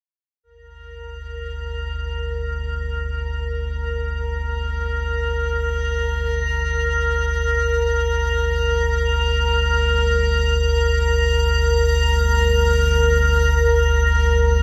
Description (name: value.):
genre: dark ambient drone.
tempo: free time.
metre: none.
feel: none.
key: G minor.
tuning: A4 = 441 Hz.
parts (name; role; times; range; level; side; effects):
deep rumbling drone; drone; 0.8-14.6 s; G1 to D2; -23 LUFS; equal; built-in reverb, subtle chorus.
icy glass pad; texture; 0.9-14.6 s; Bb4; -23 LUFS; equal; chorus, built-in reverb, shimmer reverb.
room: moderate spring reverb, RT60 2.7 s.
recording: none.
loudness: -20 LUFS.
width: mono.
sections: 0.4-14.6 A section.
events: none.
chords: 0.4 Gm.